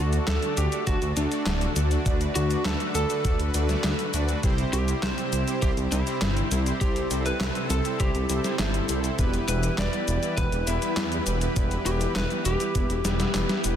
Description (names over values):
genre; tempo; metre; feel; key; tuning
synthwave; 101 BPM; 4/4; straight; unclear; A4 = 440 Hz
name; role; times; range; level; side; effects
lightly driven lead guitar; melody; 0.0-13.6 s; D4 to D5; -32 LUFS; left 1 dB; tape echo
FM electric piano with soft pad layer; second line; 0.0-13.6 s; D4 to D5; -36 LUFS; right 1 dB; chorus, ping-pong delay
soft supersaw; sustained chords; 0.0-13.8 s; C3 to B4; -32 LUFS; equal; sidechain pumping
analog synth brass; stabs; 0.0-13.8 s; G3 to E5; -33 LUFS; right 2 dB; chorus
dark detuned saw bass; bass; 0.0-13.8 s; D1 to E2; -27 LUFS; equal; none
detuned 8-bit digital drum machine; drums; 0.1-13.8 s; cabasa, handclaps, hi-hat, snare drum; -31 LUFS; left 1 dB; none
electronic kick drum; drums; 0.9-12.9 s; none; -26 LUFS; equal; none
room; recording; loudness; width
light reverb; dense, heavily limited modern master; -23 LUFS; side -9 dB against mid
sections
0.0-13.8 A section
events
drum fill 13.0-13.8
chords
0.0 D; 4.4 C; 9.2 Em